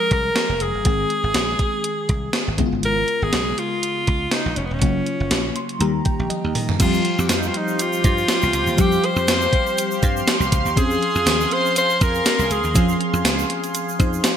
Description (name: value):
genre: 1980s-style pop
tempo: 121 BPM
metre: 4/4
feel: swing 55% on 16ths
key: F minor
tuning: A4 = 440 Hz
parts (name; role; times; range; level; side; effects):
- edgy alto saxophone; melody; 0.0-13.0 s; Cb4 to C5; -22 LUFS; left 1 dB; none
- FM electric piano with soft pad layer; accompaniment; 0.0-14.4 s; Db3 to C6; -25 LUFS; left 1 dB; chorus, tremolo
- dry thumbed slap bass; bass; 0.1-14.2 s; Eb1 to Eb3; -24 LUFS; right 1 dB; none
- gated 80s digital drum machine; drums; 0.1-14.4 s; crash cymbal, hi-hat, kick drum, snare drum, tambourine, toms; -21 LUFS; equal; gated reverb, gated reverb snare
- chorused pulse-width pad; sustained chords; 6.8-14.4 s; G4 to C6; -26 LUFS; right 2 dB; none
- tube shaker; percussion; 6.8-14.4 s; none; -35 LUFS; right 11 dB; none
room: moderate plate reverb, RT60 2.0 s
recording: bright 1980s-style digital production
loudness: -17 LUFS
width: side -9 dB against mid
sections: 0.0-6.8 A section; 6.8-14.4 B section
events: FM electric piano fill 5.3-6.8; drum fill 6.3-6.8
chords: 0.0 Fm; 0.9 Ab; 2.6 Db7; 4.8 Gbmaj7; 5.8 Eb; 6.8 Fsus2; 10.8 Dbmaj7